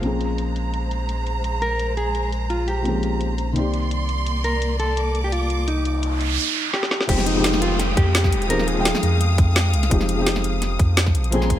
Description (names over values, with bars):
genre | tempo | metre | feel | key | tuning
liquid drum and bass | 170 BPM | 4/4 | swing 53% on 16ths | F minor | A4 = 440 Hz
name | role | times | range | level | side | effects
felt-muted upright piano | accompaniment | 0.0-11.6 s | Eb3 to G5 | -26 LUFS | left 1 dB | dub echo
warm symphonic string section | sustained chords | 0.0-11.6 s | Ab3 to Eb6 | -28 LUFS | equal | sidechain pumping
warm sub bass | bass | 0.0-11.6 s | Eb1 to F2 | -22 LUFS | equal | tube saturation
garage drum kit | drums | 0.0-11.6 s | crash cymbal, hi-hat, snare drum | -24 LUFS | equal | low-pass filter on hats, low-pass filter on snare, low-pass filter on cymbals
mellow electric guitar | melody | 1.6-9.4 s | Eb4 to Bb4 | -26 LUFS | left 1 dB | ping-pong delay
noise sweep and downlifter | sound effects | 6.0-9.9 s | none | -26 LUFS | right 2 dB | none
electronic kick drum | drums | 7.1-11.6 s | none | -19 LUFS | equal | none
room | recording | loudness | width
light reverb | none | -18 LUFS | side -12 dB against mid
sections
0.0-7.1 A section; 7.1-11.6 B section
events
filter sweep on felt piano 0.0-7.1; noise sweep 6.0-7.1; drum fill 6.7-7.1; drop 7.1-11.6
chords
0.0 Bbm9; 3.6 Cm9; 7.1 Fm9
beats
| 0.03 0.38 0.73 1.09 | 1.44 1.79 2.15 2.50 | 2.85 3.21 3.56 3.91 | 4.26 4.62 4.97 5.32 | 5.68 6.03 6.38 6.74 | 7.09 7.44 7.79 8.15 | 8.50 8.85 9.21 9.56 | 9.91 10.27 10.62 10.97 | 11.32